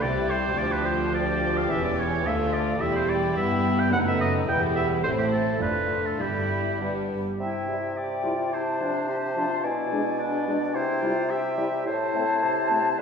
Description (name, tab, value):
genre	quick classical-period movement for symphony orchestra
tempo	107 BPM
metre	2/4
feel	rubato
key	C major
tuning	A4 = 440 Hz
part	dark studio violin section	melody	0.0-7.2 s	C#4 to G4	-33 LUFS	left 4 dB	none
part	clear oboe	second line	0.0-13.0 s	G4 to G5	-29 LUFS	right 1 dB	none
part	warm studio violin section	second line	0.0-7.2 s	B3 to G4	-31 LUFS	left 1 dB	none
part	warm studio viola section	accompaniment	0.0-7.2 s	E3 to B3	-28 LUFS	equal	none
part	warm studio cello section	bass	0.0-7.2 s	D2 to C3	-31 LUFS	right 2 dB	none
part	warm studio double bass section	bass	0.0-7.2 s	E1 to D2	-33 LUFS	right 2 dB	none
part	timpani	percussion	6.2-6.8 s	G2	-44 LUFS	left 3 dB	none
part	clear clarinet	second line	7.4-13.0 s	D4 to G4	-32 LUFS	left 4 dB	none
part	flute section	second line	7.4-13.0 s	G5 to A5	-28 LUFS	left 1 dB	none
part	clear bassoon	accompaniment	7.4-13.0 s	A2 to D3	-28 LUFS	equal	none
part	warm French horn section	sustained chords	7.7-12.8 s	F3 to E4	-32 LUFS	left 2 dB	none
room	wet scoring stage reverb, RT60 1.9 s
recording	heard from further back in the room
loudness	-23 LUFS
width	side -6 dB against mid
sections	0.0-7.4 A section; 7.4-13.0 B section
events	none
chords	0.0 C; 0.6 Dm; 1.7 Em6; 2.2 Dm; 2.8 Em; 3.9 B7/F#; 4.5 Em; 5.0 Am; 5.6 Dm/F; 6.2 Em/G; 7.4 C; 8.5 Dm7/C; 9.6 Bm6; 10.7 C; 11.9 Am; 12.4 Am/C